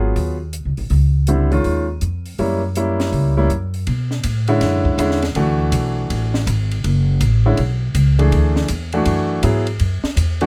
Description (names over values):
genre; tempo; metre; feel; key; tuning
modal jazz; 162 BPM; 4/4; swing 65% on 8ths; B dorian from 3.9 s; A4 = 443 Hz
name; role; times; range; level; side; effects
clear grand piano; accompaniment; 0.0-10.5 s; D3 to G#4; -22 LUFS; equal; none
upright bass; bass; 0.0-10.5 s; F#1 to B2; -20 LUFS; equal; none
compact cocktail drum kit; drums; 0.2-10.5 s; hi-hat, kick drum, ride cymbal, snare drum; -30 LUFS; equal; none
room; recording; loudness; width
little or no reverb; close, detailed microphones; -18 LUFS; mono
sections
0.0-3.9 A section; 3.9-10.5 B section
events
none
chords
0.0 G#7sus4; 2.4 F#7b9; 3.9 Bm11